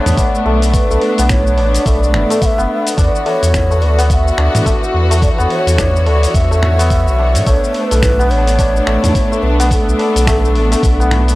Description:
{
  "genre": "organic downtempo",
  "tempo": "107 BPM",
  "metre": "4/4",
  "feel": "swing 60% on 16ths",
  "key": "B minor",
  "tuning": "A4 = 440 Hz",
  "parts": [
    { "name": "breathy low ney", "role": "melody", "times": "0.0-11.3 s", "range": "A4 to F#5", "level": "-19 LUFS", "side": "equal", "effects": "tape echo" },
    { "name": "rich studio string section", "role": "sustained chords", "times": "0.0-11.4 s", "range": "E3 to C#5", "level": "-20 LUFS", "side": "equal", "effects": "sidechain pumping" },
    { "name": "santur", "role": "arpeggios", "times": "0.0-11.4 s", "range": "A3 to D4", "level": "-19 LUFS", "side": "left 2 dB", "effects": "tape echo" },
    { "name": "wind-like tuned noise texture", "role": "texture", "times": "0.0-11.4 s", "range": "B4", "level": "-30 LUFS", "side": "right 2 dB", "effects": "none" },
    { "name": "warm sub bass", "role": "bass", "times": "0.1-11.4 s", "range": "F#1 to A2", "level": "-14 LUFS", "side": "equal", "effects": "sidechain pumping" },
    { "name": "dusty soul sampler-style drum kit", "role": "drums", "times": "0.1-11.4 s", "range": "finger snaps, hi-hat, shaker, toms", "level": "-22 LUFS", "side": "equal", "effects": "none" },
    { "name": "electronic kick drum", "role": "drums", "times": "0.2-11.0 s", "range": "none", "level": "-16 LUFS", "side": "equal", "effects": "none" }
  ],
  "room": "little or no reverb",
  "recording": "dry, gritty hardware recording",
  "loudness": "-11 LUFS",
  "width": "side -18 dB against mid",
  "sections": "0.0-11.4 A section",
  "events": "none",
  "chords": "0.0 Bm7; 3.0 E5; 7.5 Bm7"
}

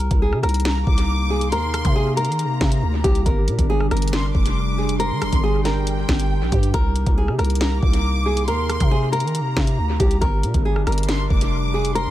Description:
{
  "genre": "hip hop, drill",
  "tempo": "138 BPM",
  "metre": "4/4",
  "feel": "half-time",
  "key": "C minor",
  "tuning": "A4 = 440 Hz",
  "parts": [
    { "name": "nylon-string guitar", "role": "melody", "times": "0.0-12.1 s", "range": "G4 to Bb4", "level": "-25 LUFS", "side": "equal", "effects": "dub echo" },
    { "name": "warbly tape-like pad", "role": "sustained chords", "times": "0.0-12.1 s", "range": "C3 to G4", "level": "-29 LUFS", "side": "left 1 dB", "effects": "chorus, built-in reverb" },
    { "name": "growling 808-style bass", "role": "bass", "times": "0.0-12.1 s", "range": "F1 to Eb3", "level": "-21 LUFS", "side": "equal", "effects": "none" },
    { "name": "drill drum kit", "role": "drums", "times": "0.0-12.1 s", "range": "hi-hat, kick drum, rim click, snare drum", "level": "-22 LUFS", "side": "equal", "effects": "dub echo" },
    { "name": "warm studio violin section", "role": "second line", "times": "0.7-12.1 s", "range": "G5 to D6", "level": "-30 LUFS", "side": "equal", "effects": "dub echo" }
  ],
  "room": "little or no reverb",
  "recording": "echo-heavy mix",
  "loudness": "-17 LUFS",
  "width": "side -14 dB against mid",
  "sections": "0.0-12.1 A section",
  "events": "none",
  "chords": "0.0 Cm7; 3.3 Gsus4; 6.7 Cm7; 10.2 Gsus4"
}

